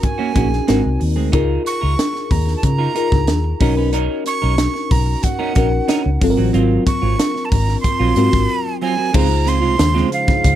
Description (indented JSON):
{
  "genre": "polished 1980s jazz-funk pop",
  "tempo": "92 BPM",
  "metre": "4/4",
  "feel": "straight",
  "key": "Db major",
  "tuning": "A4 = 441 Hz",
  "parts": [
    { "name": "breathy bright jazz flute", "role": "melody", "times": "0.0-10.6 s", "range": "F5 to Db6", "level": "-22 LUFS", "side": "right 4 dB", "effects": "none" },
    { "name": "bell-like FM electric piano", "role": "accompaniment", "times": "0.0-10.6 s", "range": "Gb3 to C5", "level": "-21 LUFS", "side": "left 3 dB", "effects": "wide subtle chorus" },
    { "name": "semi-hollow electric guitar", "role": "riff", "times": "0.0-10.5 s", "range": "Gb3 to Cb5", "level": "-22 LUFS", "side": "right 7 dB", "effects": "wide subtle chorus" },
    { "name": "crisp fusion drum kit", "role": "drums", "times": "0.0-10.6 s", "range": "crash cymbal, hi-hat, kick drum, snare drum", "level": "-19 LUFS", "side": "equal", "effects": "none" },
    { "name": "vintage muted fingered electric bass", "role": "bass", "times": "0.4-10.6 s", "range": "Ab1 to Db3", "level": "-18 LUFS", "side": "equal", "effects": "none" },
    { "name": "warm analog pad", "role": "sustained chords", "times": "9.1-10.6 s", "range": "Db3 to C5", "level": "-26 LUFS", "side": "equal", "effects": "chorus" }
  ],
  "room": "light reverb",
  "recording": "none",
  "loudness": "-14 LUFS",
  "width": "side -12 dB against mid",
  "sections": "0.0-9.1 A section; 9.1-10.6 B section",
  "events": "break 8.5-9.1",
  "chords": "0.0 Ab9sus4; 0.7 Ab7; 1.3 Db69; 3.6 Cbmaj9; 6.2 Ab13; 9.1 Dbmaj7"
}